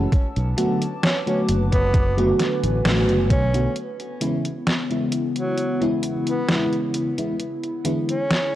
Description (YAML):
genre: vaporwave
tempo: 66 BPM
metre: 4/4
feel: straight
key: unclear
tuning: A4 = 440 Hz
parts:
  - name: FM electric piano with soft pad layer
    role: accompaniment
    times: 0.0-8.1 s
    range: C#3 to F#4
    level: -23 LUFS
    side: equal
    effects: tremolo, lush chorus, tape echo
  - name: warbly tape-like pad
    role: sustained chords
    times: 0.0-8.6 s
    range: C#3 to D6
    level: -29 LUFS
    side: equal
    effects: chorus, built-in reverb, phaser
  - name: fingered electric bass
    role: bass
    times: 0.0-3.7 s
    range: F#1 to B1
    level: -22 LUFS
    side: equal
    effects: tube saturation
  - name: detuned 8-bit digital drum machine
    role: drums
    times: 0.1-8.5 s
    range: hi-hat, snare drum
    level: -24 LUFS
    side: equal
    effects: overdrive
  - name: electronic kick drum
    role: drums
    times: 0.1-3.5 s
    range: none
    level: -19 LUFS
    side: equal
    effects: overdrive
  - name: clear tenor saxophone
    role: melody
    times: 1.0-8.6 s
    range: F#3 to C#4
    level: -28 LUFS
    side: right 1 dB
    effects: tape echo
room: light reverb, digital ambience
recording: dry, gritty hardware recording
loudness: -19 LUFS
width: side -13 dB against mid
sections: 0.0-3.8 A section; 3.8-8.6 B section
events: band accent 2.9-3.3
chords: 0.1 Bm7; 3.8 C#m7; 7.4 E7